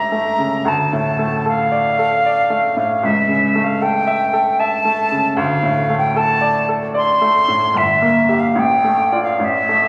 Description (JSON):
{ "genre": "classical, romantic duo for flute and grand piano", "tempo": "76 BPM", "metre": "3/4", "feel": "rubato", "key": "D minor", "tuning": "A4 = 440 Hz", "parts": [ { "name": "silver concert flute", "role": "melody", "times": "0.0-9.9 s", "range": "E5 to C6", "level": "-18 LUFS", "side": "equal", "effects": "none" }, { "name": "bright baby grand piano", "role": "accompaniment", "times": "0.0-9.9 s", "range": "G1 to E5", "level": "-21 LUFS", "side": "equal", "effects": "none" } ], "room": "wet recital hall reverb, RT60 1.6 s", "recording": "recorded on a phone in the room, club reverb, compression", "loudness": "-16 LUFS", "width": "mono", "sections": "0.0-9.9 A section", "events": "none", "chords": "0.0 A7/C#; 0.7 Dm; 3.0 A7/C#; 5.4 D5; 7.8 Edim/G; 8.6 Dm/A" }